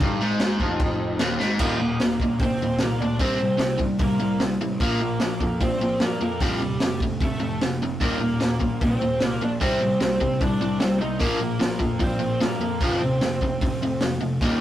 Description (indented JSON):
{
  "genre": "punk rock",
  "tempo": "150 BPM",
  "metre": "4/4",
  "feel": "straight",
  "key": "Eb lydian",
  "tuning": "A4 = 440 Hz",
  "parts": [
    { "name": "lead guitar through a small cranked amp", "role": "melody", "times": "0.0-14.6 s", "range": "G3 to Eb5", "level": "-28 LUFS", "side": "right 1 dB", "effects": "overdrive" },
    { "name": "overdriven electric guitar", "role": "riff", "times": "0.0-14.6 s", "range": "Eb2 to C4", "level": "-24 LUFS", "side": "equal", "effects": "none" },
    { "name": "fuzz picked electric bass", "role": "bass", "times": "0.0-14.6 s", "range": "Eb1 to G2", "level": "-32 LUFS", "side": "equal", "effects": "overdrive" },
    { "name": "raw garage drum kit", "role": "drums", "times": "0.0-14.5 s", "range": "crash cymbal, hi-hat, kick drum, snare drum", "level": "-26 LUFS", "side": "equal", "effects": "none" }
  ],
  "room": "light reverb",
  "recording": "rough rehearsal-room recording, warm saturation",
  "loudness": "-21 LUFS",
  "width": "side -12 dB against mid",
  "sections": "0.0-1.6 A section; 1.6-14.6 B section",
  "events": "drum fill 1.4",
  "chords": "0.0 Eb; 1.6 Eb5; 3.2 C5; 4.8 Bb5; 6.4 F; 8.0 Eb5; 9.6 Cm; 11.2 Bb5; 12.8 F5"
}